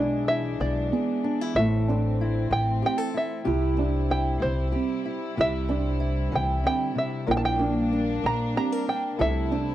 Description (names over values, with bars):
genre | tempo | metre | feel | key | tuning
acoustic folk duo or small band | 63 BPM (dotted quarters) | 6/8 | straight | unclear | A4 = 440 Hz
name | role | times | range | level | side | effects
open-back banjo | melody | 0.0-9.7 s | C5 to Bb5 | -28 LUFS | right 1 dB | none
fingerpicked old ladder-braced acoustic guitar | accompaniment | 0.0-9.7 s | A2 to Bb4 | -30 LUFS | left 3 dB | none
warm studio string section | sustained chords | 0.0-9.7 s | C3 to E4 | -35 LUFS | equal | none
felt-muted upright piano | arpeggios | 0.0-9.7 s | B3 to E4 | -30 LUFS | right 6 dB | none
upright bass | bass | 0.0-9.7 s | A1 to C2 | -27 LUFS | equal | none
room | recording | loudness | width
small room ambience | dry, close 1970s-style studio recording | -23 LUFS | side -13 dB against mid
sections
0.0-9.7 A section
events
none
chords
0.0 E7/B; 1.6 Am; 3.5 C; 7.3 Gm/Bb; 9.2 Am/C